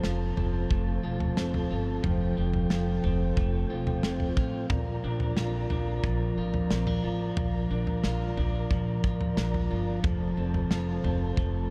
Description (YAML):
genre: dream pop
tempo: 90 BPM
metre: 4/4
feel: straight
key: F major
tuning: A4 = 440 Hz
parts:
  - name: mellow tonewheel organ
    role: sustained chords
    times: 0.0-11.7 s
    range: F4 to Bb5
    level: -38 LUFS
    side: equal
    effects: fast rotary speaker
  - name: electric guitar through a small old amp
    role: arpeggios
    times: 0.0-11.7 s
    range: F3 to C5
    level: -34 LUFS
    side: equal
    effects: subtle chorus, tape echo
  - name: upright bass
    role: bass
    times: 0.0-11.7 s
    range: E1 to Bb1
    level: -33 LUFS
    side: equal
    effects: none
  - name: loose indie drum kit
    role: drums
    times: 0.0-11.5 s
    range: kick drum, snare drum, toms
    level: -34 LUFS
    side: equal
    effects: none
room: moderate huge ambient reverb, RT60 8.9 s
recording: dreamy mix soaked in reverb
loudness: -28 LUFS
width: mono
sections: 0.0-11.7 A section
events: none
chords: 0.0 F; 4.7 Bb; 10.0 F